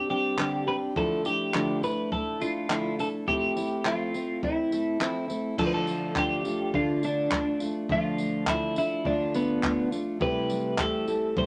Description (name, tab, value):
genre	acoustic pop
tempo	104 BPM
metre	4/4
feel	straight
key	unclear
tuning	A4 = 438 Hz
part	twelve-string electric guitar	melody	0.0-11.5 s	B3 to C5	-31 LUFS	equal	none
part	fingerpicked plugged-in steel-string acoustic guitar	accompaniment	0.0-11.5 s	G2 to G4	-32 LUFS	equal	none
part	picked steel-string acoustic guitar	arpeggios	0.0-11.5 s	F3 to A4	-39 LUFS	equal	none
part	compact cocktail drum kit	drums	0.4-11.5 s	crash cymbal, handclaps, kick drum, tambourine	-36 LUFS	equal	none
room	moderate studio reverb, RT60 0.6 s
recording	none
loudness	-28 LUFS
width	mono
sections	0.0-5.6 A section; 5.6-11.5 B section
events	none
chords	0.0 Gsus4; 1.0 Dmadd9; 3.3 Fmaj7; 5.6 Dm; 10.2 Am7/C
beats	0.38 | 0.96 1.54 2.12 2.70 | 3.28 3.85 4.43 5.01 | 5.59 6.17 6.74 7.32 | 7.90 8.48 9.05 9.63 | 10.21 10.79 11.37